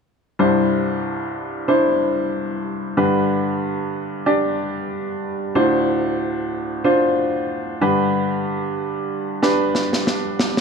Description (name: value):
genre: piano-driven pop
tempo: 93 BPM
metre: 4/4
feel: swing 56% on 16ths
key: G mixolydian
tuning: A4 = 442 Hz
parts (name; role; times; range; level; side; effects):
- bright upright piano; accompaniment; 0.4-10.6 s; C2 to D5; -18 LUFS; equal; none
- snare drum; drums; 9.4-10.6 s; none; -21 LUFS; equal; none
room: moderate studio reverb, RT60 0.9 s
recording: none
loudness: -18 LUFS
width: side -5 dB against mid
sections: 0.4-10.6 A section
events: drum fill 9.4-10.6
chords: 0.4 Cadd9; 3.0 G; 5.6 Dm7; 7.8 G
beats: | 0.39 1.04 1.68 2.33 | 2.97 3.62 4.26 4.91 | 5.55 6.20 6.85 7.49 | 8.14 8.78 9.43 10.07